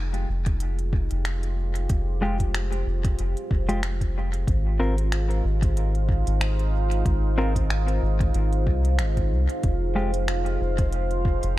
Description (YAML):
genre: ambient dub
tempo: 93 BPM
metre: 4/4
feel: swing 56% on 16ths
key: F minor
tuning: A4 = 442 Hz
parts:
  - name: deep dark ambient pad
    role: sustained chords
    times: 0.0-11.6 s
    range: Ab3 to F5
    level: -31 LUFS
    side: right 2 dB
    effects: chorus, built-in reverb
  - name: soft dub sub bass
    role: bass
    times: 0.0-11.6 s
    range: F1 to C2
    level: -24 LUFS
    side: equal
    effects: none
  - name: organic electronic drum kit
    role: drums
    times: 0.1-11.5 s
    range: finger snaps, hi-hat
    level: -34 LUFS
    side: equal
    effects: dub echo
  - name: electronic kick drum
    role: drums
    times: 0.5-11.4 s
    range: none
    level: -24 LUFS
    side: equal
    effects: none
  - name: mellow electric guitar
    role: stabs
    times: 2.2-10.1 s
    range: Ab3 to Bb4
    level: -31 LUFS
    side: left 1 dB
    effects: vintage 12-bit sampler grit, dub echo
room: little or no reverb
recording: none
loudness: -22 LUFS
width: side -16 dB against mid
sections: 0.0-11.6 A section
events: none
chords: 0.0 Fmadd9; 4.5 Ab6; 9.6 Fmadd9